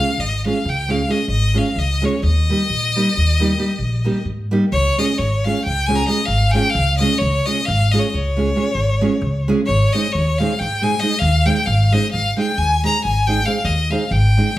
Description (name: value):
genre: balkan folk, Balkan wedding band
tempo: 267 BPM (eighths)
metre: 11/8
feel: straight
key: unclear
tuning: A4 = 441 Hz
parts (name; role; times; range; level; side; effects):
- clear violin; melody; 0.0-14.6 s; Db5 to Bb5; -20 LUFS; left 2 dB; none
- nylon-string guitar; accompaniment; 0.0-14.5 s; G3 to Ab4; -21 LUFS; right 2 dB; none
- upright bass; bass; 0.2-14.6 s; Ab1 to Ab2; -19 LUFS; equal; none
room: moderate large studio reverb, RT60 0.8 s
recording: band playing live in one room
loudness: -15 LUFS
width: side -15 dB against mid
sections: 0.0-4.7 A section; 4.7-14.6 B section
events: none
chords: 0.0 Db; 2.2 Eb; 4.7 Db; 9.7 Ab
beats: 0.16 0.39 0.62 0.85 1.08 1.31 1.54 1.76 1.99 | 2.22 2.45 2.68 2.91 3.14 3.36 3.59 3.82 4.05 4.27 4.50 | 4.73 4.96 5.18 5.41 5.63 5.86 6.09 6.31 6.54 6.76 6.99 | 7.21 7.44 7.66 7.89 8.11 8.33 8.56 8.78 9.01 9.23 9.45 | 9.68 9.90 10.12 10.35 10.57 10.79 11.01 11.24 11.46 11.68 11.90 | 12.13 12.35 12.57 12.79 13.01 13.23 13.46 13.68 13.90 14.12 14.34 | 14.56